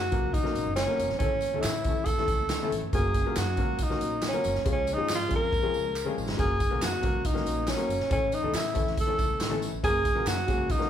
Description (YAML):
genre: uptempo 1960s-style soul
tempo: 139 BPM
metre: 4/4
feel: straight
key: F# major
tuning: A4 = 435 Hz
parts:
  - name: breathy tenor saxophone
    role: melody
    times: 0.0-10.9 s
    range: C#4 to A#4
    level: -28 LUFS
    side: equal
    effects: none
  - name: upright bass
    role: bass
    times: 0.0-10.8 s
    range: E#1 to A2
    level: -35 LUFS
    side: equal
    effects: none
  - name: congas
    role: percussion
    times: 0.0-10.9 s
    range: none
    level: -46 LUFS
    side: right 2 dB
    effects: none
  - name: clear upright piano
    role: accompaniment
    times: 0.1-10.9 s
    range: E3 to A#4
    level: -33 LUFS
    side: left 4 dB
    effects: none
  - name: swinging big-band drum kit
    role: drums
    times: 0.1-10.9 s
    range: hi-hat, kick drum, snare drum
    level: -30 LUFS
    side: right 1 dB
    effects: none
  - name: tambourine and handclaps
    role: percussion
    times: 0.3-10.8 s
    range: none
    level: -41 LUFS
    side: right 2 dB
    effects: none
room: moderate large studio reverb, RT60 1.4 s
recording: band playing live in one room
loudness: -25 LUFS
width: side -9 dB against mid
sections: 0.0-10.9 A section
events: drum fill 5.5-6.4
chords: 0.0 F#; 1.2 A; 2.9 F#; 4.7 C#; 6.4 F#; 8.1 A; 9.8 F#